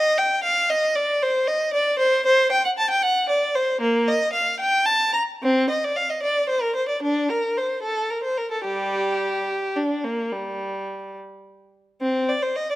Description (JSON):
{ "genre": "classical, baroque-style suite movement for unaccompanied violin", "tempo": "70-78 BPM (dotted quarters)", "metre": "12/8", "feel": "rubato", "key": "G minor", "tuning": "A4 = 440 Hz", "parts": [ { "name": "rich violin", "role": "solo", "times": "0.0-12.8 s", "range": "G3 to Bb5", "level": "-20 LUFS", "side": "equal", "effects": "none" } ], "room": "moderate recital hall reverb, RT60 1.3 s", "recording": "close, detailed microphones", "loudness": "-20 LUFS", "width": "side -16 dB against mid", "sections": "0.0-12.0 A section", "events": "none", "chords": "none" }